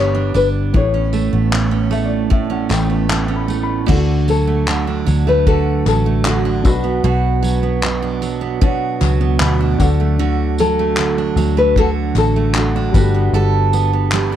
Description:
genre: acoustic pop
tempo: 76 BPM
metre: 4/4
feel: straight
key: D major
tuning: A4 = 440 Hz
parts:
  - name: nylon-string guitar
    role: melody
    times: 0.0-14.4 s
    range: F#4 to C#5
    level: -20 LUFS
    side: left 3 dB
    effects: none
  - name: dark upright piano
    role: accompaniment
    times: 0.0-14.4 s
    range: G3 to B5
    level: -27 LUFS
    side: left 8 dB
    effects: none
  - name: picked steel-string acoustic guitar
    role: accompaniment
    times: 0.0-14.4 s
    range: A2 to A4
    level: -19 LUFS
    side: right 8 dB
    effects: none
  - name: vintage muted fingered electric bass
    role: bass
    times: 0.0-14.4 s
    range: G1 to D2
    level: -18 LUFS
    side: left 1 dB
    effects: none
  - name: cloth-damped thuddy drum kit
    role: drums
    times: 0.4-14.3 s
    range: crash cymbal, handclaps, kick drum, tambourine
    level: -20 LUFS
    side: left 1 dB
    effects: none
  - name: group handclap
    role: percussion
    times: 1.5-14.3 s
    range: none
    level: -29 LUFS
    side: left 17 dB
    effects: none
room: studio reverb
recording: dry, close 1970s-style studio recording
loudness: -14 LUFS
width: side -10 dB against mid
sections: 0.0-3.9 A section; 3.9-14.4 B section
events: upright piano fill 1.5-3.9, 9.0-10.2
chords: 0.0 G; 0.7 Aadd9; 3.9 D; 6.6 Bm; 9.8 D; 12.9 Gadd9

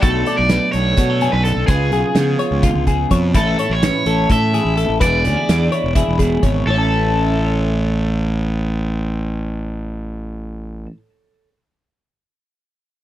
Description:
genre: math rock and midwest emo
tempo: 253 BPM (eighths)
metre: 7/8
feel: straight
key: A major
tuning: A4 = 441 Hz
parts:
  - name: overdriven semi-hollow guitar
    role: melody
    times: 0.0-10.9 s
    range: G#4 to E5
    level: -21 LUFS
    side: equal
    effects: none
  - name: clean electric guitar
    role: accompaniment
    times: 0.0-11.5 s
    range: E2 to C#5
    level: -24 LUFS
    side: right 6 dB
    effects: none
  - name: twelve-string electric guitar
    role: arpeggios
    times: 0.0-11.0 s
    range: E4 to A5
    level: -23 LUFS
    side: left 8 dB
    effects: analog chorus
  - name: fuzz fingered electric bass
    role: bass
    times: 0.0-10.9 s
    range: E1 to C#3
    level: -19 LUFS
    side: equal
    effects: overdrive
  - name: loose indie drum kit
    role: drums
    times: 0.0-6.5 s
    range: hi-hat, kick drum, snare drum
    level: -19 LUFS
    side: equal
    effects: none
room: studio ambience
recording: none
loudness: -15 LUFS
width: side -13 dB against mid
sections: 0.0-6.7 A section; 6.7-10.0 B section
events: none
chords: 0.0 Bm9; 1.7 C#7; 3.4 Amaj7; 5.0 E7; 6.7 A

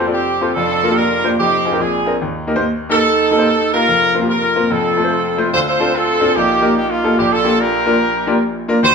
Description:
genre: gospel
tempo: 145 BPM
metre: 4/4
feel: swing 64% on 8ths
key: Bb major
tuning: A4 = 440 Hz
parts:
  - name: clear horn section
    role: melody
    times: 0.0-8.9 s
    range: A3 to C5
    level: -15 LUFS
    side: right 1 dB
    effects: none
  - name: clear grand piano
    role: accompaniment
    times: 0.0-8.9 s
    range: F1 to D5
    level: -17 LUFS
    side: left 2 dB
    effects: none
room: wet large studio reverb, RT60 1.1 s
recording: band playing live in one room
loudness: -13 LUFS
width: side -5 dB against mid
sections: 0.0-5.5 A section; 5.5-8.9 B section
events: none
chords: 0.0 F; 0.6 Bb/F; 1.4 F7(no3); 1.8 Bb9; 2.2 Eb; 3.9 Fsus4; 4.7 F; 5.5 Dm7; 6.4 Eb/Bb; 7.2 Bb6

